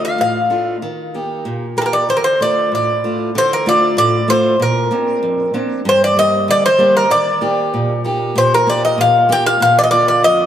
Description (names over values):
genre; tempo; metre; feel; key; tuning
greek folk, Greek bouzouki band; 96 BPM; 2/4; straight; D phrygian; A4 = 445 Hz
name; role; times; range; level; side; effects
Greek bouzouki; melody; 0.0-10.5 s; A4 to G5; -13 LUFS; equal; none
fingerpicked steel-string acoustic guitar; accompaniment; 0.0-10.5 s; F2 to G4; -19 LUFS; right 1 dB; none
room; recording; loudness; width
wet plate reverb, RT60 3.4 s; heard from further back in the room; -12 LUFS; side -10 dB against mid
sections
0.0-3.4 A section; 3.4-10.5 B section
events
none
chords
0.0 Dm; 0.8 Eb; 2.1 Dm; 4.6 Bbadd9; 5.9 Gm; 7.1 Eb; 9.6 Bb